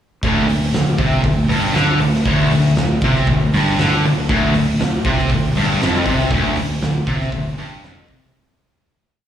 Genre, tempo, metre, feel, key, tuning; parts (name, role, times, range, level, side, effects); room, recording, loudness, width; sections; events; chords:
garage rock duo or trio; 118 BPM; 4/4; straight; D minor; A4 = 440 Hz
thick fuzz guitar; riff; 0.2-8.3 s; D2 to D3; -16 LUFS; equal; distortion, slapback echo
fuzz fingered electric bass; bass; 0.2-8.3 s; D1 to D2; -24 LUFS; equal; overdrive
oversized low-tuned drum kit; drums; 0.2-8.2 s; hi-hat, kick drum, snare drum; -21 LUFS; equal
little or no reverb; live gig heard through the venue's PA, recital hall reverb, studio reverb; -14 LUFS; side -10 dB against mid
0.2-8.3 riff
fade-out 6.3-8.3